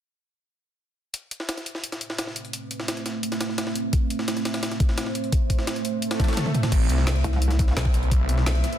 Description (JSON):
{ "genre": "dark technical drum and bass", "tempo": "172 BPM", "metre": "4/4", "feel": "straight", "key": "A minor", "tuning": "A4 = 443 Hz", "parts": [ { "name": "deep dark ambient pad", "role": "sustained chords", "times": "2.3-8.8 s", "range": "A3 to E5", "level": "-29 LUFS", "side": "right 3 dB", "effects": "chorus, built-in reverb, sidechain pumping" }, { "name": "breakbeat sampler-style drum kit", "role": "drums", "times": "1.1-8.7 s", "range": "hi-hat, snare drum", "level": "-32 LUFS", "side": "equal", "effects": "high-pass filter on hats, high-pass filter on snare" }, { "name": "drum and bass drum kit", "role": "drums", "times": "1.1-8.8 s", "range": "crash cymbal, hi-hat, snare drum, toms", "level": "-30 LUFS", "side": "equal", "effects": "overdrive" }, { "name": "electronic kick drum", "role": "drums", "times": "3.9-8.2 s", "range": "none", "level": "-22 LUFS", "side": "equal", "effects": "overdrive" }, { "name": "swell", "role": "sound effects", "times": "6.1-6.7 s", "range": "none", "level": "-34 LUFS", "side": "equal", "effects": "none" }, { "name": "snarling distorted saw bass", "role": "bass", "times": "6.7-8.6 s", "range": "A1 to C2", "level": "-22 LUFS", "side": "equal", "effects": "distortion, tube saturation, sidechain pumping" }, { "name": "pulsing pluck wobble bass", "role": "bass", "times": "7.2-7.8 s", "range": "C2", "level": "-22 LUFS", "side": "equal", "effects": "chorus" } ], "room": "little or no reverb", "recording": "dense, heavily limited modern master", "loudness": "-22 LUFS", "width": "side -11 dB against mid", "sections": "1.1-6.7 A section; 6.7-8.8 B section", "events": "filter sweep on ambient pad 1.1-6.7; swell 6.1-6.7; drum fill 6.2-6.7; drop 6.7-8.8", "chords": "1.1 Amadd9" }